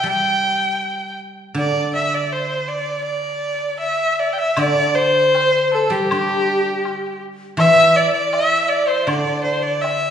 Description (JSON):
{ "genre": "chinese traditional, Chinese chamber ensemble", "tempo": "80 BPM", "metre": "2/4", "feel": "rubato", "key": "D shang mode", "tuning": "A4 = 438 Hz", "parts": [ { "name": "rich erhu", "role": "melody", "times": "0.0-10.1 s", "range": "G4 to G5", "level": "-18 LUFS", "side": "right 1 dB", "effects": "none" }, { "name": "guzheng", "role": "accompaniment", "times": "0.0-10.1 s", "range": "C3 to D4", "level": "-25 LUFS", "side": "right 1 dB", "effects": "none" }, { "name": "low xiao", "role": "second line", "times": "3.8-10.1 s", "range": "G4 to E5", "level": "-20 LUFS", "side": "left 2 dB", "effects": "none" }, { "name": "woodblock", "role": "percussion", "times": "4.6-10.0 s", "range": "none", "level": "-29 LUFS", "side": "left 2 dB", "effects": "none" } ], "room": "wet recital hall reverb, RT60 1.7 s", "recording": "recorded in a church or concert hall, nothing above 10.7 kHz", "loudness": "-16 LUFS", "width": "side -8 dB against mid", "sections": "0.0-4.6 A section; 4.6-10.1 B section", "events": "none", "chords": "none", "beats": "| 0.06 0.82 | 1.57 2.31 | 3.03 3.80 | 4.58 5.35 | 6.11 6.85 | 7.58 8.33 | 9.08 9.83" }